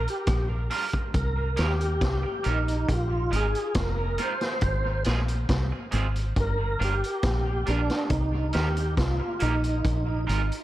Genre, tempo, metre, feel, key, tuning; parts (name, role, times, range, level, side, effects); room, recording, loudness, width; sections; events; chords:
roots reggae; 69 BPM; 4/4; straight; C minor; A4 = 439 Hz
tonewheel organ; melody; 0.0-10.2 s; D4 to C5; -30 LUFS; right 1 dB; overdrive, chorus vibrato, slow rotary speaker, tape echo
deep dub fingered electric bass; bass; 0.0-10.5 s; F1 to Eb2; -26 LUFS; equal
vintage drum kit; drums; 0.1-10.6 s; hi-hat, kick drum, rim click, snare drum; -30 LUFS; equal; analog delay
electric guitar at the edge of break-up; accompaniment; 0.7-10.4 s; G3 to Bb4; -34 LUFS; right 5 dB; spring reverb, tape echo
light reverb, small room reverb; echo-heavy mix; -24 LUFS; side -14 dB against mid
0.0-10.6 A section
tonewheel organ solo 0.0-10.6
0.0 Gm; 1.1 Cm7; 2.9 Bb7sus4; 4.6 Ab6; 6.4 Gm7; 8.1 Cm7; 9.8 Bb7sus4